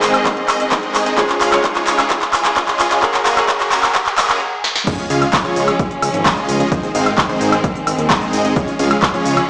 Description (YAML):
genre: EDM, festival progressive house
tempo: 130 BPM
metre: 4/4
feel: straight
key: Db major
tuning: A4 = 440 Hz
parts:
  - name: bright baby grand piano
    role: accompaniment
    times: 0.0-4.9 s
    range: Ab2 to Db5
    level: -22 LUFS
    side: equal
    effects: sidechain pumping, tape echo
  - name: clear studio string section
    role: sustained chords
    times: 0.0-9.5 s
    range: Db2 to Eb5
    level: -22 LUFS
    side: equal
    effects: sidechain pumping
  - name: dense compressed supersaw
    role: riff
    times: 0.0-9.4 s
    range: Ab3 to F5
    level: -19 LUFS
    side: equal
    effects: sidechain pumping, tape echo
  - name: big-room dance drum kit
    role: drums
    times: 0.0-9.5 s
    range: crash cymbal, handclaps, hi-hat, shaker, snare drum, woodblock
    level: -16 LUFS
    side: equal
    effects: none
  - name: riser and sub drop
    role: sound effects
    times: 0.1-6.7 s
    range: none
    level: -28 LUFS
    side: equal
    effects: none
  - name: electronic kick drum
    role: drums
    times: 0.3-9.1 s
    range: none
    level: -20 LUFS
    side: equal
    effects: none
  - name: fat analog bass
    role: bass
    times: 5.1-9.4 s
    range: Ab1 to Eb2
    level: -20 LUFS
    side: equal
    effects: sidechain pumping
room: moderate digital room reverb, RT60 1.1 s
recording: played on a big sound system in a bare room, stone room reverb, high-pass filter, small speaker sound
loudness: -13 LUFS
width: side -33 dB against mid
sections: 0.0-4.9 A section; 4.9-9.5 B section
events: build-up 0.0-4.9; drum fill 0.0-4.4, 4.6; stop 4.4-4.9; drop 4.9-9.5; impact 4.9-6.7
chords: 0.0 Ab; 1.2 Db; 3.0 Gbadd9; 4.9 Db; 6.7 Ab; 8.6 Db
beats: 0.26 0.72 | 1.18 1.64 2.10 2.56 | 3.02 3.49 3.95 4.41 | 4.87 5.33 5.79 6.25 | 6.72 7.18 7.64 8.10 | 8.56 9.03 9.49